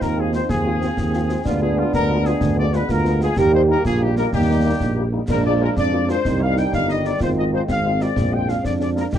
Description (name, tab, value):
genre	military-style march for wind band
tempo	125 BPM (dotted quarters)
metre	6/8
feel	straight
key	Eb major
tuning	A4 = 439 Hz
part	mellow trumpet section	melody	0.0-9.2 s	F4 to G5	-27 LUFS	left 3 dB	none
part	flute section	second line	0.0-9.2 s	F4 to G5	-28 LUFS	left 3 dB	none
part	warm euphonium	second line	0.0-9.2 s	C4 to G4	-24 LUFS	right 4 dB	none
part	dark trombone section	sustained chords	0.0-9.2 s	Eb3 to C4	-28 LUFS	left 1 dB	none
part	dark tuba	bass	0.0-9.2 s	G1 to F2	-21 LUFS	right 1 dB	none
part	concert snare drum, concert bass drum and clash cymbals	drums	0.0-9.2 s	none	-27 LUFS	left 1 dB	none
part	mellow French horn section	accompaniment	0.2-9.0 s	G3 to F4	-28 LUFS	left 5 dB	none
room	little or no reverb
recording	dark, warm production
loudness	-17 LUFS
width	side -10 dB against mid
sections	0.0-9.2 A section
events	none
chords	0.0 Fm7/Eb; 1.5 Ddim7; 3.4 Eb; 5.3 Bb7; 6.2 Cm; 7.2 Fm7/Ab; 8.2 Bb7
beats	0.01 | 0.49 0.97 | 1.45 1.93 | 2.41 2.89 | 3.37 3.85 | 4.33 4.81 | 5.29 5.77 | 6.25 6.73 | 7.21 7.69 | 8.16 8.64 | 9.12